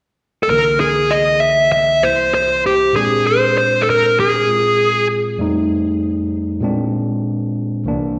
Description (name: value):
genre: blues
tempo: 98 BPM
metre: 4/4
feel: swing 54% on 16ths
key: unclear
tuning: A4 = 438 Hz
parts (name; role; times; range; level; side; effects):
- dark smooth lead guitar; melody; 0.4-5.1 s; G4 to E5; -16 LUFS; equal; overdrive, slapback echo, analog delay
- overdriven tine electric piano; accompaniment; 0.5-8.2 s; C2 to F4; -22 LUFS; equal; none
room: moderate plate reverb, RT60 2.7 s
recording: live gig heard through the venue's PA, recital hall reverb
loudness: -16 LUFS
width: mono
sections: 0.5-8.2 A section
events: none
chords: 0.5 C7; 2.9 Bb7; 5.4 F7; 6.6 Bb7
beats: | 0.49 1.10 1.72 2.33 | 2.94 3.56 4.17 4.79 | 5.40 6.01 6.63 7.24 | 7.86